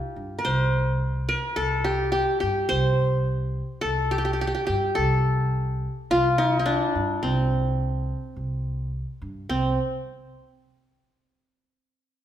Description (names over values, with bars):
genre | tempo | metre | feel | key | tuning
Arabic maqam ensemble | 106 BPM | 4/4 | straight | C maqam rast | A4 = 438 Hz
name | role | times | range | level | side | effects
qanun | melody | 0.0-9.8 s | C4 to C5 | -24 LUFS | equal | none
upright bass | bass | 0.2-9.8 s | C2 to G2 | -26 LUFS | equal | none
room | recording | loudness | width
wet recital hall reverb, RT60 1.4 s | recorded in a church or concert hall | -22 LUFS | side -10 dB against mid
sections
0.0-9.5 A section; 9.5-11.8 B section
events
none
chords
none